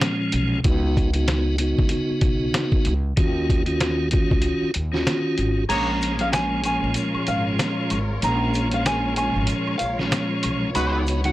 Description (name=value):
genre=hip hop, boom-bap hip-hop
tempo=95 BPM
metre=4/4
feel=swing 58% on 16ths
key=unclear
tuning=A4 = 440 Hz
part: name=tonewheel organ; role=accompaniment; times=0.0-11.3 s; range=Bb2 to Gb4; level=-24 LUFS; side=equal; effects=fast rotary speaker, cassette tape, high-pass filter, low-pass filter
part: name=trip hop sampler-style drum kit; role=drums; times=0.0-11.3 s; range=crash cymbal, hi-hat, kick drum, snare drum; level=-23 LUFS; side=equal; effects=none
part: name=upright bass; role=bass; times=0.3-11.3 s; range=Ab1 to Eb2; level=-25 LUFS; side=equal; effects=tube saturation
part: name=nylon-string guitar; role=melody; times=5.7-11.3 s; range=F5 to Cb6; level=-26 LUFS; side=right 1 dB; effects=high-pass filter, low-pass filter, tape echo
part: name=warm studio string section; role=sustained chords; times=5.7-11.3 s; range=Gb3 to Db5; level=-32 LUFS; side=left 1 dB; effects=high-pass filter, low-pass filter
part: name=clear horn section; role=stabs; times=5.7-5.9, 10.7-11.0 s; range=Ab3 to Db5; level=-29 LUFS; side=left 1 dB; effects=high-pass filter, low-pass filter, tape echo
part: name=maracas and woodblock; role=percussion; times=5.7-11.2 s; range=none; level=-37 LUFS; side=equal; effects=none
room=light reverb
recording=blown-out, overdriven recording, overdrive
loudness=-20 LUFS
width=side -16 dB against mid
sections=0.0-5.7 A section; 5.7-11.3 B section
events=break 4.4-5.7; kick muted 5.7-11.3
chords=0.0 Bbm7; 0.6 Db9sus4; 3.2 Ebm9; 5.7 Bbm7; 10.8 Db9sus4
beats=0.01 | 0.65 1.28 1.91 2.54 | 3.17 3.81 4.44 5.07 | 5.70 6.33 6.96 7.59 | 8.23 8.86 9.49 10.12 | 10.75